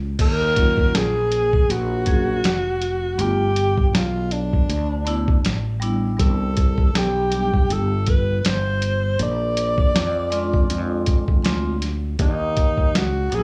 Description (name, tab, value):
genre	hip hop, jazz-hop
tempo	80 BPM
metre	4/4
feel	swing 58% on 16ths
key	unclear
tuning	A4 = 441 Hz
part	fretless electric bass	bass	0.0-13.4 s	F1 to F2	-26 LUFS	equal	none
part	breathy alto saxophone	melody	0.2-13.4 s	D4 to D5	-25 LUFS	equal	none
part	lo-fi sampler-style drum kit	drums	0.2-13.4 s	crash cymbal, hi-hat, kick drum, snare drum	-22 LUFS	equal	vintage 12-bit sampler grit
part	vibraphone with medium hard mallets	accompaniment	0.5-13.4 s	Gb3 to Ab4	-29 LUFS	equal	none
room	digital ambience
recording	small room reverb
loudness	-20 LUFS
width	mono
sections	0.2-12.2 A section; 12.2-13.4 B section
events	none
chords	0.2 Ebm9; 3.2 G; 6.2 Cmaj7sus2; 9.2 Bb7; 12.2 Ebm7